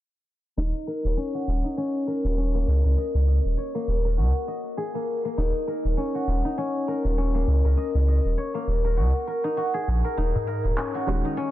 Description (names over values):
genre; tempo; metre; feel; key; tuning
organic downtempo; 100 BPM; 4/4; swing 57% on 16ths; Eb minor pentatonic; A4 = 439 Hz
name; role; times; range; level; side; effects
guzheng; arpeggios; 0.6-11.5 s; Bb3 to Eb5; -27 LUFS; left 2 dB; low-pass filter, tape echo
warm sub bass; bass; 0.6-11.2 s; Eb1 to Db2; -22 LUFS; equal; none
electronic cabasa and handclaps; drums; 10.2-11.5 s; none; -36 LUFS; right 1 dB; overdrive
darbuka; percussion; 10.4-11.4 s; none; -30 LUFS; left 1 dB; none
felt-muted upright piano; accompaniment; 11.1-11.3 s; Eb3 to Gb4; -28 LUFS; right 1 dB; none
room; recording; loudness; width
small room ambience; dense, heavily limited modern master, low-pass filter; -22 LUFS; side -14 dB against mid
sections
0.6-11.5 A section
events
filter sweep on sub bass 0.6-11.5; filter sweep on guzheng 0.6-11.5; filter sweep 0.6-11.5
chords
0.6 Ebm7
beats
| 0.58 1.18 1.78 2.38 | 2.98 3.58 4.18 4.78 | 5.38 5.98 6.58 7.18 | 7.78 8.38 8.98 9.58 | 10.18 10.78 11.38